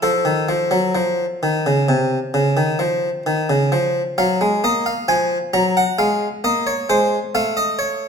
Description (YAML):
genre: classical, baroque-style two-part invention for harpsichord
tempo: 66 BPM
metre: 4/4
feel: straight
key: unclear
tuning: A4 = 440 Hz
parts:
  - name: harpsichord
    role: solo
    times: 0.0-8.1 s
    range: C3 to Bb5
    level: -16 LUFS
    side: equal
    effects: none
room: wet recital hall reverb, RT60 1.5 s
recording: minimal, uncompressed stereo recording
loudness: -16 LUFS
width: side -6 dB against mid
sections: 0.0-3.7 A section; 3.7-8.1 B section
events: none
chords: 0.0 F; 3.7 Bb5/F; 5.5 Cm7b5/Gb; 7.3 F7/A